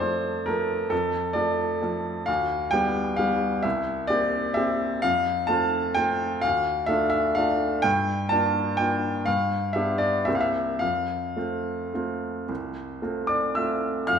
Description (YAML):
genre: classical, piano waltz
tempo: 102-140 BPM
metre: 3/4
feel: rubato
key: F major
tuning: A4 = 445 Hz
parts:
  - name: clear baby grand piano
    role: solo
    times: 0.0-14.2 s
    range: C2 to F6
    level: -23 LUFS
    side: equal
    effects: none
room: wet stone room reverb, RT60 1.3 s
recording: none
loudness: -23 LUFS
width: side -7 dB against mid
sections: 0.0-14.1 A section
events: none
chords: 0.0 Dm/F; 2.3 G7/D; 3.6 C7; 5.0 F; 6.4 Dm; 7.8 Gm7; 9.3 G7; 10.3 C7; 10.8 F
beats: 0.01 0.47 | 0.91 1.35 1.82 | 2.28 2.73 3.19 | 3.65 4.09 4.56 | 5.04 5.49 5.97 | 6.44 6.89 7.36 | 7.84 8.31 8.79 | 9.27 9.75 10.26 | 10.81 11.37 11.95 | 12.49 13.03 13.57 | 14.09